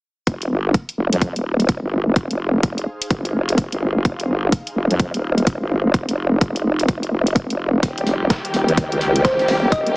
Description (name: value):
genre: bass house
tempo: 127 BPM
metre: 4/4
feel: swing 62% on 16ths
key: F minor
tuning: A4 = 441 Hz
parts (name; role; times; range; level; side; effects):
- vowel-sweep wobble bass; bass; 0.3-10.0 s; Eb1 to F2; -19 LUFS; equal; chorus, overdrive, sidechain pumping
- electronic hi-hat; drums; 0.3-9.9 s; none; -27 LUFS; equal; small room ambience
- electronic kick drum; drums; 0.3-9.8 s; none; -18 LUFS; equal; small room ambience
- ethereal airy pad; texture; 2.3-10.0 s; Eb4 to G5; -31 LUFS; equal; none
- warm symphonic string section; sustained chords; 7.8-10.0 s; Eb3 to G4; -23 LUFS; left 1 dB; sidechain pumping
- dusty soul sampler-style drum kit; drums; 7.8-9.9 s; hi-hat, snare drum; -29 LUFS; equal; high-pass filter on hats, small room ambience, high-pass filter on snare, high-pass filter on room
- thumb-piano-like synth pluck; melody; 9.2-9.9 s; C5 to Eb5; -19 LUFS; equal; chorus, phaser
room: digital ambience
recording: heavily compressed radio sound, small speaker sound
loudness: -17 LUFS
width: side -28 dB against mid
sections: 0.3-10.0 A section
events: none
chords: 0.3 Fm7; 7.8 Eb